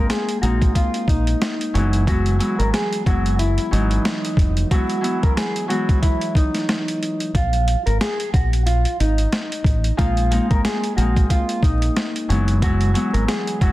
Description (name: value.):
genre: hip hop, boom-bap hip-hop.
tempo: 91 BPM.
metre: 4/4.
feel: swing 56% on 16ths.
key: unclear.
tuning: A4 = 440 Hz.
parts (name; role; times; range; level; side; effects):
mellow electric guitar; melody; 0.0-13.7 s; Eb4 to Bb4; -25 LUFS; equal; lush chorus, high-pass filter, low-pass filter, digital delay.
Celtic harp; accompaniment; 0.0-13.7 s; Fb3 to Fb4; -24 LUFS; left 1 dB; cassette tape, high-pass filter, low-pass filter.
deep dub fingered electric bass; bass; 0.0-13.7 s; F1 to Bb1; -19 LUFS; equal; none.
boom bap sampler-style drum kit; drums; 0.1-13.7 s; hi-hat, kick drum, snare drum; -21 LUFS; equal; none.
room: digital ambience.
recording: dense, heavily limited modern master, vinyl crackle.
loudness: -17 LUFS.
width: side -17 dB against mid.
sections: 0.0-13.7 A section.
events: none.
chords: 0.0 Bb9sus4; 1.7 Gb9sus4; 7.3 Bb9sus4; 12.3 Gb9sus4.